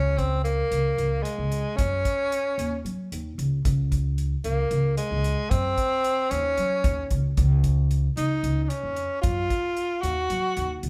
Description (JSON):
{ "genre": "progressive instrumental, band music in an uneven meter", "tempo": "225 BPM (eighths)", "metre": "7/8", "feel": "straight", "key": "Gb lydian", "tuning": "A4 = 440 Hz", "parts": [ { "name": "breathy tenor saxophone", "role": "melody", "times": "0.0-10.8 s", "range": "Ab3 to Gb4", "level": "-28 LUFS", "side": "equal", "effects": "none" }, { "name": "upright bass", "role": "bass", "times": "0.0-10.9 s", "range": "Db2 to Gb3", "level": "-27 LUFS", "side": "equal", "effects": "none" }, { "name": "damped 70s drum kit", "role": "drums", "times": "0.2-10.9 s", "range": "hi-hat, kick drum", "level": "-30 LUFS", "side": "equal", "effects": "none" } ], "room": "moderate large studio reverb, RT60 1.1 s", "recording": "band playing live in one room", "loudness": "-25 LUFS", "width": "mono", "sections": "0.0-10.9 A section", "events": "none", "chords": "0.0 Db5; 1.8 Gb5; 3.6 Db5; 5.5 Gb5; 7.4 Db; 9.2 Gb5", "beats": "0.19 0.46 0.72 0.99 1.25 1.52 | 1.79 2.05 2.32 2.58 2.85 3.12 3.38 | 3.65 3.92 4.18 4.45 4.71 4.98 5.25 | 5.51 5.78 6.05 6.31 6.58 6.84 7.11 | 7.38 7.64 7.91 8.18 8.44 8.71 8.97 | 9.24 9.51 9.77 10.04 10.30 10.57 10.84" }